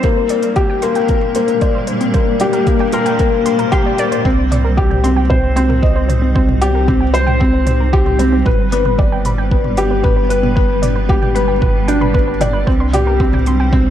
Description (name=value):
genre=piano and strings electronica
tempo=114 BPM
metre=4/4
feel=straight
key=C minor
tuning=A4 = 437 Hz
part: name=granular cloud pad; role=sustained chords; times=0.0-13.9 s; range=Bb2 to C5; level=-22 LUFS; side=right 1 dB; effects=built-in reverb, sidechain pumping
part: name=warbly dusty pluck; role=arpeggios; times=0.0-13.8 s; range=B3 to C6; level=-24 LUFS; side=right 3 dB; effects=chorus, cassette tape, sidechain pumping, tape echo
part: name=felt-muted upright piano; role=riff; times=0.0-13.9 s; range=Bb3 to Eb5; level=-16 LUFS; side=left 2 dB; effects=tape echo
part: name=deep house drum kit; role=drums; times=0.0-13.8 s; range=hi-hat, toms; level=-25 LUFS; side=right 1 dB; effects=high-pass filter on hats, studio reverb, high-pass filter on toms
part: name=electronic kick drum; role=drums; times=0.0-13.8 s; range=none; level=-16 LUFS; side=equal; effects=studio reverb
part: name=warm sub bass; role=bass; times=4.2-13.9 s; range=G1 to C2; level=-17 LUFS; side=equal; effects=sidechain pumping
room=light reverb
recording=dark, warm production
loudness=-12 LUFS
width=side -10 dB against mid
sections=0.0-4.2 A section; 4.2-13.9 B section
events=build-up 0.0-4.2; drop 4.2-13.9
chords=0.0 Gm/Bb; 4.2 Cm; 8.5 G; 12.7 Cm